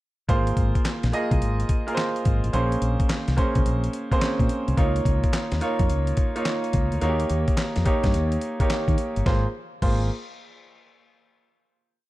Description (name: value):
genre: R&B, new jack swing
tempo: 107 BPM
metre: 4/4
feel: swing 65% on 16ths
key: Ab major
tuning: A4 = 439 Hz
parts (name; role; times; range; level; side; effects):
- clear grand piano; accompaniment; 0.3-10.1 s; Bb3 to Eb5; -26 LUFS; right 1 dB; none
- mellow fretless electric bass; bass; 0.3-10.1 s; G1 to Eb3; -24 LUFS; equal; wide subtle chorus
- dusty soul sampler-style drum kit; drums; 0.3-10.0 s; crash cymbal, handclaps, hi-hat, kick drum, snare drum; -24 LUFS; equal; none
room: little or no reverb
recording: dark, warm production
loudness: -21 LUFS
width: side -17 dB against mid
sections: 0.3-9.3 verse; 9.3-11.5 final chord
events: none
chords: 0.3 Ab69; 2.5 Bbm9; 4.8 Db69; 7.0 Eb7; 9.3 Ab69